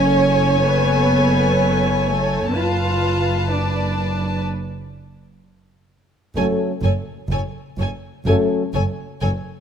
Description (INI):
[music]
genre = cinematic, suspense film score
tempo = 63 BPM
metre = 4/4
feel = straight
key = F# harmonic minor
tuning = A4 = 440 Hz
[part]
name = warm chamber violin section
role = melody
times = 0.0-9.3 s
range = G#5 to A5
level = -26 LUFS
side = left 6 dB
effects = none
[part]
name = warm chamber violin section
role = second line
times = 0.0-9.3 s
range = A4 to E#5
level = -27 LUFS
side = equal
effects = none
[part]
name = warm chamber viola section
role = accompaniment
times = 0.0-9.3 s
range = A4 to C#5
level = -24 LUFS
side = right 1 dB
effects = none
[part]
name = rich chamber double bass section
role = bass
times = 0.0-9.3 s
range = F#1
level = -21 LUFS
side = right 2 dB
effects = none
[part]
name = warm studio cello section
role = bass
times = 0.0-9.3 s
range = F#2 to E#4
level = -24 LUFS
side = equal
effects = none
[part]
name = mellow French horn section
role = sustained chords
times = 6.4-8.6 s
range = C#4 to A4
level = -23 LUFS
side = left 9 dB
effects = none
[part]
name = warm trombone section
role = sustained chords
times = 6.4-8.6 s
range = F#3 to A3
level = -24 LUFS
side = right 4 dB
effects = none
[sound]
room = light reverb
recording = none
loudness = -17 LUFS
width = side -8 dB against mid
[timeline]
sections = 0.0-6.4 A section; 6.4-9.6 A section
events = break 4.5-6.4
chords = 0.0 F#madd9; 2.5 Bm7/F#; 6.4 F#m